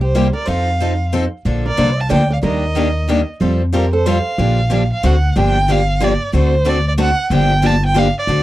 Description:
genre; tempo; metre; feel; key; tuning
acoustic string swing (jazz manouche); 184 BPM; 3/4; swing 61% on 8ths; Bb major, G minor from 5.4 s; A4 = 440 Hz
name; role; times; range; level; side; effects
warm violin; melody; 0.0-8.4 s; Bb4 to A5; -20 LUFS; right 2 dB; none
nylon-string guitar; second line; 0.0-5.0 s; G4 to F5; -24 LUFS; right 3 dB; none
upright bass; bass; 0.0-8.4 s; G1 to F2; -16 LUFS; equal; none
picked steel-string acoustic guitar; accompaniment; 0.1-8.4 s; C3 to A4; -20 LUFS; left 4 dB; none
picked steel-string acoustic guitar; accompaniment; 0.1-8.4 s; C3 to A4; -22 LUFS; right 6 dB; none
room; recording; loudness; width
light reverb; dry, close 1970s-style studio recording; -13 LUFS; side -15 dB against mid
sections
0.0-5.4 A section; 5.4-8.4 B section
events
none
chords
0.5 F7; 1.5 Bbmaj7; 2.4 Ebmaj7; 3.4 Fadd9; 4.4 Bb6; 5.0 D7; 5.4 Gm7; 6.3 D7; 7.3 Gm7

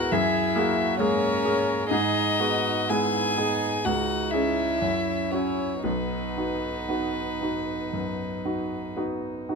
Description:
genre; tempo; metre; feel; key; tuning
classical, slow romantic movement for piano quartet; 57-69 BPM; 4/4; rubato; B major; A4 = 442 Hz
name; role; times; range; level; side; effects
rich violin; melody; 0.0-9.0 s; B4 to G#5; -28 LUFS; left 5 dB; none
dark cello; second line; 0.0-9.5 s; C#4 to A#4; -32 LUFS; right 6 dB; none
dark violin; second line; 0.0-8.9 s; B3 to G#4; -32 LUFS; right 1 dB; none
clear grand piano; accompaniment; 0.0-9.6 s; B1 to G#4; -27 LUFS; equal; none
room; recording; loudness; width
light reverb; close, detailed microphones; -23 LUFS; side -4 dB against mid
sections
0.0-9.6 A section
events
none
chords
0.1 F#9; 1.9 G#m; 3.8 C#5; 4.8 F#5; 5.8 B

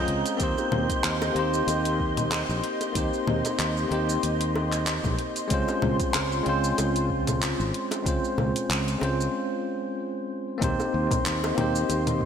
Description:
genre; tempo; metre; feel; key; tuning
sunset chillout; 94 BPM; 4/4; swing 55% on 16ths; Eb mixolydian; A4 = 440 Hz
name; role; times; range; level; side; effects
bell-like tine electric piano; accompaniment; 0.0-12.3 s; Ab3 to Eb5; -28 LUFS; equal; auto-pan, digital delay
airy breathy pad; sustained chords; 0.0-12.3 s; F4 to C6; -32 LUFS; left 2 dB; chorus
fretless electric bass; bass; 0.0-12.3 s; Ab1 to Eb2; -29 LUFS; equal; none
wind-like tuned noise texture; texture; 0.0-12.3 s; G6 to C7; -39 LUFS; right 4 dB; built-in reverb, analog chorus
deep house drum kit; drums; 0.1-12.2 s; congas, handclaps, hi-hat, shaker; -30 LUFS; equal; overdrive, gated reverb
electronic kick drum; drums; 0.4-12.3 s; none; -31 LUFS; equal; overdrive
bongos; percussion; 0.6-12.0 s; none; -38 LUFS; right 1 dB; none
room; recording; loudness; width
moderate lush hall reverb, RT60 2.7 s; bright 1980s-style digital production; -23 LUFS; side -8 dB against mid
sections
0.0-10.6 A section; 10.6-12.3 B section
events
break 9.3-10.6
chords
0.4 Eb6; 5.5 Dbmaj7; 10.6 Eb6

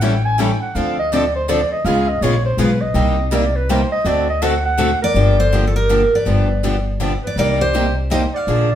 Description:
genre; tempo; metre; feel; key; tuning
acoustic string swing (jazz manouche); 163 BPM; 3/4; swing 62% on 8ths; G minor; A4 = 441 Hz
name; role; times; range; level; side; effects
mellow clarinet; second line; 0.0-8.8 s; F4 to Ab5; -21 LUFS; right 2 dB; none
picked steel-string acoustic guitar; accompaniment; 0.0-8.7 s; C3 to A4; -22 LUFS; left 2 dB; none
picked steel-string acoustic guitar; accompaniment; 0.0-8.7 s; C3 to A4; -24 LUFS; right 1 dB; none
upright bass; bass; 0.0-8.8 s; G1 to D2; -19 LUFS; equal; none
picked steel-string acoustic guitar; melody; 5.0-8.8 s; A4 to F5; -19 LUFS; equal; none
room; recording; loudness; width
wet studio reverb, RT60 0.9 s; heard from further back in the room; -14 LUFS; side -10 dB against mid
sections
0.0-5.2 A section; 5.2-8.8 B section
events
clarinet solo 0.0-5.2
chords
0.0 A7; 0.7 Dm7; 1.8 C#6; 3.0 Cm7; 4.1 D7; 5.2 Gm7; 6.3 G7; 7.4 Cm7

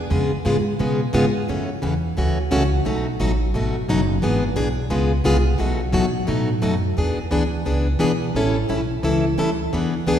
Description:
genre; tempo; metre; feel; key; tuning
acoustic string swing (jazz manouche); 175 BPM; 4/4; swing 60% on 8ths; E mixolydian; A4 = 440 Hz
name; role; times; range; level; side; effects
upright bass; bass; 0.0-10.2 s; F#1 to B2; -23 LUFS; right 1 dB; none
picked plugged-in steel-string acoustic guitar; accompaniment; 0.1-10.2 s; B2 to A4; -20 LUFS; left 1 dB; none
room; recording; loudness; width
wet scoring stage reverb, RT60 2.0 s; recorded in a church or concert hall; -18 LUFS; side -9 dB against mid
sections
0.0-7.0 A section; 7.0-10.2 B section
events
none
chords
0.1 C#7; 1.5 F#m7; 2.9 B7; 4.2 E7; 4.9 C#7; 5.6 B7; 7.0 E7; 8.4 A7

